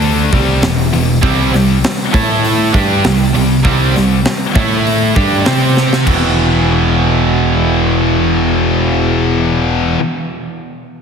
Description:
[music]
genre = hard rock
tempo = 99 BPM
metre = 4/4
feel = straight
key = E minor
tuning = A4 = 440 Hz
[part]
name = high-gain distorted guitar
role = riff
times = 0.0-10.0 s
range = E2 to C5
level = -18 LUFS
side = equal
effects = distortion
[part]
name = scooped high-gain guitar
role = riff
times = 0.0-10.0 s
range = E2 to C5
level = -16 LUFS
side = left 7 dB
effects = distortion
[part]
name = picked electric bass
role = bass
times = 0.0-9.9 s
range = E1 to C3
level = -16 LUFS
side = right 1 dB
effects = none
[part]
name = tight metal drum kit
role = drums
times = 0.0-6.2 s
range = crash cymbal, hi-hat, kick drum, snare drum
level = -17 LUFS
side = equal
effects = none
[part]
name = cranked stack guitar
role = riff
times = 1.2-10.0 s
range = E2 to C5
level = -17 LUFS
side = right 9 dB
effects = overdrive
[sound]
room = wet concert hall reverb, RT60 2.5 s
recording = heavily compressed radio sound, multiband compression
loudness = -10 LUFS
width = side -6 dB against mid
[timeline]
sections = 0.0-6.1 A section; 6.1-8.5 B section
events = drum fill 5.8-6.1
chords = 0.3 Em; 1.2 C5; 2.1 A5; 2.7 C5; 4.6 A5; 5.2 C5; 6.1 E5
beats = 0.03 0.63 | 1.23 1.84 2.44 3.05 | 3.65 4.26 4.86 5.46 | 6.07 6.67 7.28 7.88

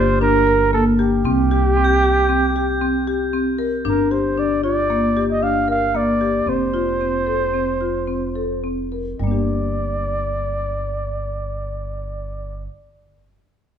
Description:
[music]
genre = contemporary instrumental, chamber music in an uneven meter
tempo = 113 BPM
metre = 5/4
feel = uneven beats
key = G minor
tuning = A4 = 440 Hz
[part]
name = breathy flugelhorn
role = melody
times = 0.0-12.7 s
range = G4 to F5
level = -21 LUFS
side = right 2 dB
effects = none
[part]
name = marimba with medium hard mallets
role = arpeggios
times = 0.0-12.8 s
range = G3 to Bb4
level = -20 LUFS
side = left 3 dB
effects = none
[part]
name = upright bass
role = bass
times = 0.0-12.7 s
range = F1 to C2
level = -25 LUFS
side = right 2 dB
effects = none
[part]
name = crotales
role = texture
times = 1.8-3.3 s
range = G6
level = -29 LUFS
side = equal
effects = none
[sound]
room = moderate recital hall reverb, RT60 1.4 s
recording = minimal, uncompressed stereo recording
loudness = -17 LUFS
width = side -8 dB against mid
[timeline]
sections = 0.0-3.8 A section; 3.8-9.2 B section; 9.2-12.0 C section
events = slowing down 4.9-9.2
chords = 0.0 Gm; 1.2 C5; 3.8 Gm7; 6.5 F5; 9.2 Gm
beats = 0.20 0.72 | 1.24 1.76 2.28 2.81 3.33 | 3.85 4.37 4.89 5.41 5.94 | 6.47 7.00 7.54 8.08 8.64 | 9.20 9.77 10.33 10.90 11.47

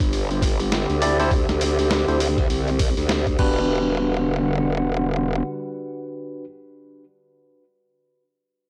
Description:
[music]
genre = glitch hop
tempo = 101 BPM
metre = 4/4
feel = swing 59% on 16ths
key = E minor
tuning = A4 = 441 Hz
[part]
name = warbly tape-like pad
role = sustained chords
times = 0.0-6.4 s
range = D3 to F#5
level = -29 LUFS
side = equal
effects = chorus, built-in reverb, phaser, sidechain pumping
[part]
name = growl bass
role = bass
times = 0.0-5.4 s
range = E1 to D2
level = -25 LUFS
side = equal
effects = chorus, tube saturation
[part]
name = boom bap sampler-style drum kit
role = drums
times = 0.0-3.5 s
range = crash cymbal, hi-hat, snare drum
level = -31 LUFS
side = equal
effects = none
[part]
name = electronic kick drum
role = drums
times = 0.0-3.5 s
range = none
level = -25 LUFS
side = equal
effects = none
[part]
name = barky tine electric piano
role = stabs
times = 1.0-6.4 s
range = D4 to D5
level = -29 LUFS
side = equal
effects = sidechain pumping, analog delay
[sound]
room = light reverb, digital ambience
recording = dry, gritty hardware recording, cassette tape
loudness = -21 LUFS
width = mono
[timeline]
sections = 0.0-3.7 A section; 3.7-6.1 B section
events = drop 0.0-3.7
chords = 0.0 D7sus4; 3.4 Em9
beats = 0.12 0.72 | 1.31 1.91 2.50 3.09 | 3.69 4.28 4.88 5.47

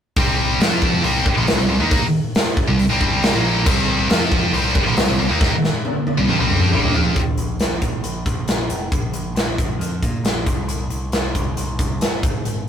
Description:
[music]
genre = hard rock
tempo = 137 BPM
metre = 4/4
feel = straight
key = C minor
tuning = A4 = 440 Hz
[part]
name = heavy high-gain guitar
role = riff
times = 0.2-7.2 s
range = Bb2 to F4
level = -18 LUFS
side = equal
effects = distortion
[part]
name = growling picked electric bass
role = bass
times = 0.2-12.7 s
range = F1 to Bb2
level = -24 LUFS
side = equal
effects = overdrive
[part]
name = big rock drum kit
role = drums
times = 0.2-12.6 s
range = crash cymbal, hi-hat, kick drum, snare drum, toms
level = -19 LUFS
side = equal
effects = none
[sound]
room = light reverb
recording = rough rehearsal-room recording, warm saturation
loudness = -16 LUFS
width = side -8 dB against mid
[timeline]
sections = 0.2-7.2 A section; 7.2-12.7 B section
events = drum fill 5.4-7.2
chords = 0.2 C5; 0.6 F5; 1.0 Cm; 4.1 F5; 4.5 Cm; 7.2 Bb5; 10.5 C5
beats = | 0.17 0.60 1.04 1.47 | 1.91 2.35 2.78 3.22 | 3.65 4.09 4.53 4.97 | 5.40 5.84 6.28 6.72 | 7.16 7.60 8.04 8.48 | 8.92 9.36 9.80 10.24 | 10.69 11.13 11.57 12.01 | 12.45

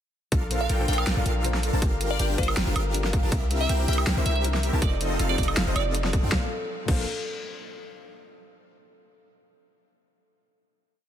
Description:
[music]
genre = future bass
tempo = 160 BPM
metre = 4/4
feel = half-time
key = Bb major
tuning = A4 = 441 Hz
[part]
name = airy dreamy lead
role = arpeggios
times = 0.3-7.0 s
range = Eb5 to A5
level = -40 LUFS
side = left 1 dB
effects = chorus, sidechain pumping
[part]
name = concert harp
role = arpeggios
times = 0.3-7.1 s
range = G4 to Eb6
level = -38 LUFS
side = left 5 dB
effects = sidechain pumping, ping-pong delay
[part]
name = supersaw chords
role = riff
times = 0.3-7.0 s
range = C4 to A5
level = -32 LUFS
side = equal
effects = sidechain pumping
[part]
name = warm 808-style bass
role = bass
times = 0.3-7.1 s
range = F1 to F2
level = -26 LUFS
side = equal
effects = sidechain pumping
[part]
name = big-room dance drum kit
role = drums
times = 0.3-7.0 s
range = crash cymbal, hi-hat, snare drum, woodblock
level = -30 LUFS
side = right 1 dB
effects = overdrive
[part]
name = electronic kick drum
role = drums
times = 0.3-7.0 s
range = none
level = -25 LUFS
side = equal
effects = none
[part]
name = dark concert grand piano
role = accompaniment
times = 0.5-7.0 s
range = Bb2 to D5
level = -36 LUFS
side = left 5 dB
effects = sidechain pumping, ping-pong delay
[part]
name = glassy wavetable pluck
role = melody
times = 0.6-6.1 s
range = C5 to G5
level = -33 LUFS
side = right 2 dB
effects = chorus, sidechain pumping, digital delay
[sound]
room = digital ambience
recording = dense, heavily limited modern master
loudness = -22 LUFS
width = side -10 dB against mid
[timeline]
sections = 0.3-6.3 drop; 6.3-7.8 final chord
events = drop 0.3-6.3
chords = 0.3 Bbmaj7; 1.8 Gm7; 3.3 C7; 4.8 F7; 6.3 Bbmaj7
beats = | 0.32 0.69 1.07 1.45 | 1.82 2.19 2.57 2.94 | 3.32 3.69 4.07 4.45 | 4.82 5.20 5.57 5.95 | 6.32 6.70

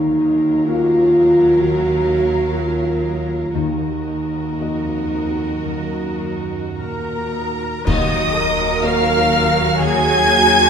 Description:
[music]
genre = cinematic, emotional film score for orchestra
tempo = 52-65 BPM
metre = 4/4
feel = rubato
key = Eb minor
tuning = A4 = 440 Hz
[part]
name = warm studio violin section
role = melody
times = 0.0-10.7 s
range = Eb5 to Ab6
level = -22 LUFS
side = left 2 dB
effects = none
[part]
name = warm studio violin section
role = second line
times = 0.0-10.7 s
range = Bb4 to Ab5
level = -25 LUFS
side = left 3 dB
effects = none
[part]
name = rich studio viola section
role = accompaniment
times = 0.0-10.7 s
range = Gb3 to Gb4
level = -26 LUFS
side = right 4 dB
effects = none
[part]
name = warm grand piano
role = accompaniment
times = 0.0-10.7 s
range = Eb2 to F5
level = -28 LUFS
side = left 4 dB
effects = none
[part]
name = dark French horn section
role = sustained chords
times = 0.0-10.7 s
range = Gb3 to Gb4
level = -18 LUFS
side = equal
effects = none
[part]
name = concert harp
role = arpeggios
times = 0.0-10.7 s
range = Eb3 to Gb4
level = -31 LUFS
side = left 5 dB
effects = none
[part]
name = clear studio double bass section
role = bass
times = 0.0-10.7 s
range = Eb2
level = -26 LUFS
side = right 4 dB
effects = none
[part]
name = warm studio cello section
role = bass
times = 0.0-10.7 s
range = Eb2 to Bb4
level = -26 LUFS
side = right 5 dB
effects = none
[part]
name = silver concert flute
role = second line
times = 6.8-10.7 s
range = Bb4 to Ab5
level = -22 LUFS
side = equal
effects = none
[part]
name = clash cymbals and concert bass drum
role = percussion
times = 7.9-9.8 s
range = none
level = -24 LUFS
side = equal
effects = none
[sound]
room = wet recital hall reverb, RT60 1.5 s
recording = recorded in a church or concert hall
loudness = -15 LUFS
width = side -7 dB against mid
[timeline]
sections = 0.0-7.9 A section; 7.9-10.7 A section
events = band accent 7.9-8.8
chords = 0.0 Ebmadd9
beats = 0.66 1.60 2.54 | 3.55 4.60 5.65 6.76 | 7.86 8.84 9.79

